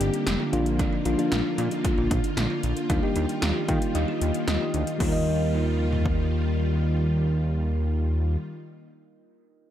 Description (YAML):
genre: synth-pop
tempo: 114 BPM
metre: 4/4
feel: straight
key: Eb major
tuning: A4 = 441 Hz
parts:
  - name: mellow FM electric piano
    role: accompaniment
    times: 0.0-8.4 s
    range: F3 to G5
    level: -30 LUFS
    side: left 3 dB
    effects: chorus, dub echo
  - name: string machine, violas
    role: sustained chords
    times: 0.0-8.4 s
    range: D3 to G4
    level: -30 LUFS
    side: equal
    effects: ensemble chorus
  - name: kalimba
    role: arpeggios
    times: 0.0-8.5 s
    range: D4 to Eb5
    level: -33 LUFS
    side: right 5 dB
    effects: dub echo
  - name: fat analog bass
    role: bass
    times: 0.0-8.4 s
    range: F1 to Eb3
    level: -25 LUFS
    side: equal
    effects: none
  - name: 80s electronic pad drums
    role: drums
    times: 0.0-6.2 s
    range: crash cymbal, hi-hat, kick drum, snare drum, toms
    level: -29 LUFS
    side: equal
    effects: gated reverb on snare and toms, overdrive, dub echo
room: light reverb, digital ambience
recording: echo-heavy mix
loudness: -22 LUFS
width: side -11 dB against mid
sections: 0.0-5.0 A section; 5.0-9.2 B section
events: FM electric piano fill 3.4-5.0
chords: 0.0 Gm; 0.5 Bb; 2.9 Ebadd9